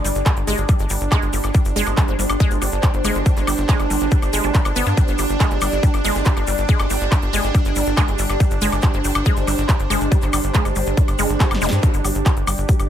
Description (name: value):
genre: psychedelic trance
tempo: 140 BPM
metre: 4/4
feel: straight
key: unclear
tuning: A4 = 441 Hz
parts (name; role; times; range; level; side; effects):
- evolving wavetable pad; sustained chords; 0.0-12.9 s; D4 to G4; -26 LUFS; right 3 dB; phaser, built-in reverb, sidechain pumping
- wide unison pluck; riff; 0.0-12.8 s; G3 to G4; -25 LUFS; moving between left 3 dB and right 3 dB; auto-pan, sidechain pumping, ping-pong delay
- tight sequencer bass; bass; 0.0-12.9 s; F1 to G2; -22 LUFS; equal; none
- big-room dance drum kit; drums; 0.0-12.9 s; handclaps, hi-hat, snare drum, woodblock; -26 LUFS; left 1 dB; overdrive
- airy breathy pad; texture; 0.0-12.9 s; D4 to D5; -27 LUFS; right 1 dB; chorus, phaser, sidechain pumping
- egg shaker; percussion; 0.1-12.9 s; none; -31 LUFS; left 4 dB; none
- electronic kick drum; drums; 0.3-12.8 s; none; -17 LUFS; equal; overdrive
- zap; sound effects; 11.6-11.7 s; none; -30 LUFS; equal; none
room: light reverb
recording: none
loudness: -16 LUFS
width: side -10 dB against mid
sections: 0.0-12.9 A section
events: drum fill 11.4-11.8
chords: 0.0 G5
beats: 0.26 0.69 1.12 | 1.54 1.97 2.40 2.83 | 3.26 3.69 4.12 4.54 | 4.97 5.40 5.83 6.26 | 6.69 7.12 7.54 7.97 | 8.40 8.83 9.26 9.69 | 10.12 10.54 10.97 11.40 | 11.83 12.26 12.69